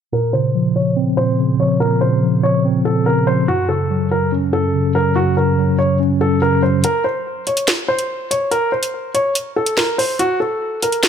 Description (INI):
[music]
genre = hip hop, drill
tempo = 143 BPM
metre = 4/4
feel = half-time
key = Bb harmonic minor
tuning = A4 = 439 Hz
[part]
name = dark baby grand piano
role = melody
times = 0.1-11.0 s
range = Gb4 to Db5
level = -18 LUFS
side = equal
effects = low-pass filter
[part]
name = mellow tine electric piano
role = accompaniment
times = 0.1-6.9 s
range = Gb2 to Db4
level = -16 LUFS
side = equal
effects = medium stereo tremolo, low-pass filter
[part]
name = drill drum kit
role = drums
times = 6.8-11.1 s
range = hi-hat, snare drum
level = -18 LUFS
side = right 1 dB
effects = none
[sound]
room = light reverb, digital ambience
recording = none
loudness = -15 LUFS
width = side -8 dB against mid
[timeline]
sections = 0.1-6.8 A section; 6.8-11.1 B section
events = filter sweep 0.1-6.8; break 6.8-11.1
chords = 0.1 Bbmadd9; 3.5 Gb; 6.8 N.C.